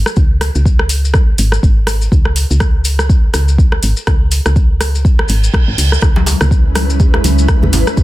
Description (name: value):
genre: afro house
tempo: 123 BPM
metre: 4/4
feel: swing 57% on 16ths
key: C# minor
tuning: A4 = 442 Hz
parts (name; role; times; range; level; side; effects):
- woody FM bass; bass; 0.0-8.0 s; G#1 to C#2; -14 LUFS; equal; sidechain pumping
- afro-pop drum kit; drums; 0.1-8.0 s; hi-hat, rim click; -19 LUFS; equal; soft clipping on snare, small room ambience
- maracas; percussion; 0.1-8.0 s; none; -24 LUFS; left 5 dB; none
- electronic kick drum; drums; 0.2-8.0 s; none; -11 LUFS; equal; small room ambience
- reverse cymbal; sound effects; 5.3-6.0 s; none; -23 LUFS; right 6 dB; none
- ethereal airy pad; sustained chords; 6.2-8.0 s; G#3 to B4; -19 LUFS; right 2 dB; ensemble chorus, built-in reverb, sidechain pumping
- djembe; percussion; 6.0-8.0 s; none; -20 LUFS; right 1 dB; none
- congas; percussion; 6.2-7.7 s; none; -21 LUFS; left 3 dB; none
room: small room ambience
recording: dense, heavily limited modern master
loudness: -10 LUFS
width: side -16 dB against mid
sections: 0.0-8.0 A section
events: reverse cymbal 5.3-6.0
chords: 0.0 C#m7